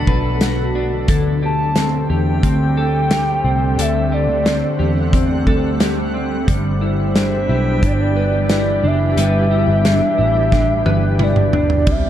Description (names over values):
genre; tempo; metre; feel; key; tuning
dream pop; 89 BPM; 4/4; straight; unclear; A4 = 441 Hz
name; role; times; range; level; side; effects
shimmering ambient pad; sustained chords; 0.0-12.1 s; B2 to F#5; -23 LUFS; equal; chorus, built-in reverb
clean electric guitar; arpeggios; 0.0-12.1 s; B2 to B4; -20 LUFS; left 1 dB; analog chorus, tape echo
vintage muted picked electric bass; bass; 0.0-12.1 s; F#1 to E2; -19 LUFS; equal; none
drifting glass-harmonics texture; texture; 0.0-8.8 s; E5 to B5; -33 LUFS; left 3 dB; chorus, built-in reverb, tape echo
loose indie drum kit; drums; 0.1-12.0 s; hi-hat, kick drum, ride cymbal, snare drum, toms; -18 LUFS; equal; none
warbly nostalgic lead; melody; 1.5-12.1 s; C5 to A5; -21 LUFS; equal; chorus, tape echo
room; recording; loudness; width
little or no reverb; dark, warm production; -14 LUFS; side -11 dB against mid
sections
0.0-11.9 A section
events
drum fill 10.5-11.9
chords
0.0 Bm7; 1.1 D7sus4; 6.5 G6